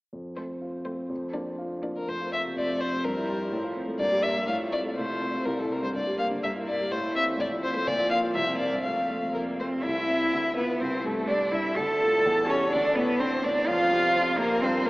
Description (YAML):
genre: quick classical-period movement for piano trio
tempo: 125 BPM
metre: 2/4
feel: straight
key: F major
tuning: A4 = 440 Hz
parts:
  - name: warm grand piano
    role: accompaniment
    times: 0.1-14.9 s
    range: C2 to Bb4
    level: -30 LUFS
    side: equal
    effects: none
  - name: warm violin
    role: melody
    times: 0.4-14.9 s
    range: A4 to A5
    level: -28 LUFS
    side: left 1 dB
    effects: none
  - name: rich cello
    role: second line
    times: 0.4-14.9 s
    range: F3 to A4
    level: -28 LUFS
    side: right 1 dB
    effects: none
room: wet cathedral reverb, RT60 6.2 s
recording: in a vast, echoing space, AM radio sound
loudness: -24 LUFS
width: side -20 dB against mid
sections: 0.1-2.1 A section; 2.1-9.8 B section; 9.8-14.9 C section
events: none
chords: 0.1 F; 1.1 Bb/F; 2.1 F; 3.0 Edim/G; 3.5 F/A; 4.0 Edim/G; 4.5 F/A; 5.0 F/C; 5.5 C; 5.9 Gm; 6.4 Edim/G; 6.9 Am; 7.4 F/A; 7.9 Bb; 8.3 C7; 8.8 F; 9.8 C; 10.3 Bdim/D; 10.8 C5; 11.8 Dm; 12.3 C#dim/E; 12.7 D5; 13.7 F5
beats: | 0.13 0.61 | 1.10 1.58 | 2.08 2.56 | 3.04 3.52 | 3.99 4.47 | 4.96 5.45 | 5.94 6.43 | 6.91 7.39 | 7.87 8.34 | 8.84 9.34 | 9.84 10.32 | 10.80 11.28 | 11.78 12.26 | 12.73 13.20 | 13.68 14.15 | 14.62